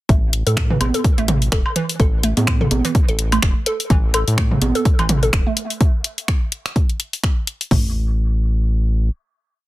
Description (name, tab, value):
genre	minimal techno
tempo	126 BPM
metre	4/4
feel	swing 57% on 16ths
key	unclear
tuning	A4 = 440 Hz
part	hollow square pluck	riff	0.1-7.9 s	E3 to A4	-24 LUFS	right 1 dB	chorus, sidechain pumping, dub echo
part	round analog bass	bass	0.1-9.1 s	E1 to A2	-19 LUFS	equal	sidechain pumping
part	house drum kit	drums	0.1-7.8 s	hi-hat, kick drum, toms	-16 LUFS	equal	overdrive
part	house drum kit	drums	0.1-7.7 s	finger snaps, hi-hat	-23 LUFS	left 2 dB	overdrive, soft clipping on snare
part	electronic toms, congas and woodblock	percussion	0.7-5.2 s	none	-21 LUFS	right 2 dB	dub echo
room	little or no reverb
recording	dense, heavily limited modern master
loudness	-16 LUFS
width	side -17 dB against mid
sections	0.1-7.7 drop; 7.7-9.7 final note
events	drop 0.1-7.7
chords	0.1 A5; 7.7 N.C.